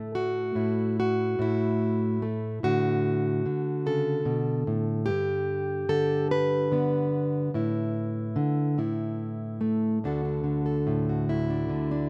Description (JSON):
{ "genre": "folk, solo fingerstyle acoustic guitar", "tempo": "48 BPM (dotted quarters)", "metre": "6/8", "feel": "rubato", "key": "D major", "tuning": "A4 = 439 Hz", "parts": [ { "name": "fingerpicked plugged-in steel-string acoustic guitar", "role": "solo", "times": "0.0-12.1 s", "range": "D2 to B4", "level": "-27 LUFS", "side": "equal", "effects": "none" } ], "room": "light reverb", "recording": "recorded outdoors, with no room sound", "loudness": "-27 LUFS", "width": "mono", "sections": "0.0-10.0 A section; 10.0-12.1 B section", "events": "none", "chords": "0.0 A5; 2.6 D5/A; 5.1 G; 7.5 Asus4; 8.8 Asus2; 10.0 Dadd9", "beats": "| 0.14 1.39 | 2.63 3.85 | 5.07 6.30 | 7.54 8.78 | 10.03 11.28" }